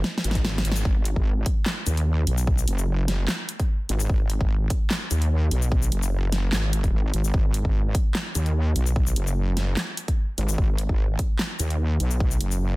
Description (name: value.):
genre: heavy wobble dubstep.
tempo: 148 BPM.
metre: 4/4.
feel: swing 54% on 16ths, half-time.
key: G# minor.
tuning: A4 = 440 Hz.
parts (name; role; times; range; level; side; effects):
wobble bass; bass; 0.0-12.8 s; F#1 to D#2; -23 LUFS; equal; chorus, overdrive.
big-room dance drum kit; drums; 0.0-12.6 s; handclaps, hi-hat, shaker, snare drum; -28 LUFS; equal; small room ambience.
electronic kick drum; drums; 0.4-12.3 s; none; -23 LUFS; equal; small room ambience.
room: digital ambience.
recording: dense, heavily limited modern master.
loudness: -21 LUFS.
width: side -21 dB against mid.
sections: 0.0-12.8 A section.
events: drum fill 0.0-0.9.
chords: none.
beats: 0.04 0.45 | 0.85 1.26 1.66 2.07 | 2.47 2.88 3.28 3.69 | 4.09 4.50 4.91 5.31 | 5.72 6.12 6.53 6.93 | 7.34 7.74 8.15 8.55 | 8.96 9.37 9.77 10.18 | 10.58 10.99 11.39 11.80 | 12.20 12.61.